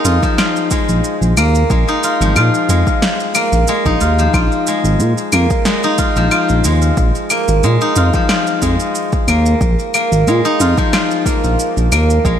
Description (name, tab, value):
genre	organic downtempo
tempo	91 BPM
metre	4/4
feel	swing 54% on 16ths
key	unclear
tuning	A4 = 438 Hz
part	steel-string zither	arpeggios	0.0-12.4 s	F3 to F4	-15 LUFS	equal	ping-pong delay
part	smooth gliding synth bass	bass	0.0-12.4 s	Ab1 to Bb2	-14 LUFS	equal	sidechain pumping
part	electronic shaker, snare drum and claves	drums	0.1-12.4 s	none	-20 LUFS	left 1 dB	overdrive
part	electronic kick drum	drums	0.2-12.4 s	none	-18 LUFS	equal	overdrive
room	moderate plate reverb, RT60 2.8 s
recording	bright 1980s-style digital production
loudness	-12 LUFS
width	side -9 dB against mid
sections	0.0-12.4 A section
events	none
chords	0.0 Bb7(no3)